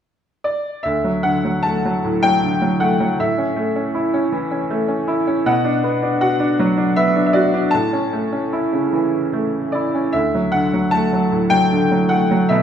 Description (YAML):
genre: classical, lyrical solo piano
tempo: 72-81 BPM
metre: 3/4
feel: rubato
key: D major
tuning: A4 = 440 Hz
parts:
  - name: bright grand piano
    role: solo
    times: 0.4-12.6 s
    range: D2 to A5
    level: -16 LUFS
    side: equal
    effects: none
room: moderate recital hall reverb, RT60 1.4 s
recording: recorded in a church or concert hall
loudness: -16 LUFS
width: side -8 dB against mid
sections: 0.9-12.6 A section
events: none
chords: 0.0 N.C.; 0.9 D; 3.2 A; 5.5 Bm; 7.7 A; 10.1 D